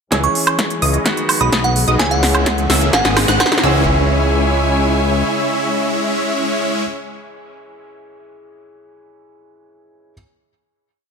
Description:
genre	EDM, festival progressive house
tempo	128 BPM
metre	4/4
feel	straight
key	C# minor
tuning	A4 = 440 Hz
part	bright grand piano	accompaniment	0.1-10.1 s	G#2 to G#4	-26 LUFS	right 2 dB	sidechain pumping, dub echo
part	dark symphonic string section	sustained chords	0.1-6.8 s	C#3 to G#5	-27 LUFS	left 2 dB	vintage 12-bit sampler grit, sidechain pumping, low-pass filter
part	wide unison pluck	arpeggios	0.1-6.8 s	D#6 to G#6	-24 LUFS	right 2 dB	sidechain pumping, dub echo
part	supersaw chords	riff	0.1-6.8 s	G#3 to G#5	-20 LUFS	equal	sidechain pumping, low-pass filter, dub echo
part	fat analog bass	bass	0.1-5.2 s	G#1 to C#2	-18 LUFS	left 1 dB	sidechain pumping
part	big-room dance drum kit	drums	0.1-3.6 s	hi-hat, snare drum, woodblock	-17 LUFS	right 1 dB	overdrive
part	electronic kick drum	drums	0.1-3.7 s	none	-26 LUFS	left 1 dB	none
part	riser	sound effects	1.3-3.9 s	none	-25 LUFS	equal	none
part	glassy synth bell	melody	0.2-3.8 s	F#5 to C#6	-21 LUFS	right 1 dB	chorus, dub echo
room	moderate digital room reverb, RT60 1.3 s, digital ambience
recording	none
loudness	-13 LUFS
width	side -6 dB against mid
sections	0.1-3.9 build; 3.9-7.6 final hit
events	build-up 0.1-3.9; drum fill 0.1-3.9; filter sweep on supersaw synth 0.1-3.9; riser 1.3-3.9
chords	0.1 C#m; 1.1 G#m7; 2.0 C#m; 2.9 G#; 3.6 C#m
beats	| 0.12 0.59 1.06 1.53 | 2.00 2.46 2.93 3.40 | 3.87 4.34 4.81 5.28 | 5.75 6.21 6.68 7.15

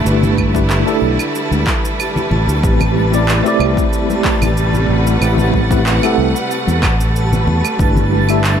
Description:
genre	sunset chillout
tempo	93 BPM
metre	4/4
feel	straight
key	A dorian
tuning	A4 = 440 Hz
part	tine electric piano	accompaniment	0.0-8.6 s	A3 to E5	-18 LUFS	moving between left 3 dB and right 3 dB	medium stereo tremolo, auto-pan, low-pass filter, digital delay
part	clear studio string section	sustained chords	0.0-8.6 s	C3 to F#5	-20 LUFS	right 1 dB	none
part	twinkling granular texture	texture	0.0-8.6 s	A5	-25 LUFS	right 3 dB	built-in reverb
part	fingered electric bass	bass	0.1-8.6 s	G1 to E2	-16 LUFS	equal	none
part	electronic cabasa, claves and handclaps	drums	0.1-8.6 s	none	-22 LUFS	right 2 dB	overdrive
part	congas	percussion	0.2-8.3 s	none	-23 LUFS	left 3 dB	none
part	electronic kick drum	drums	0.4-7.9 s	none	-18 LUFS	equal	overdrive
room	light reverb, digital ambience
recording	none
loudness	-12 LUFS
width	side -8 dB against mid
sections	0.0-8.6 A section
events	none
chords	0.0 G69; 2.3 Am9; 7.8 G69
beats	| 0.06 0.70 1.35 1.99 | 2.64 3.28 3.93 4.57 | 5.22 5.86 6.51 7.15 | 7.80 8.44

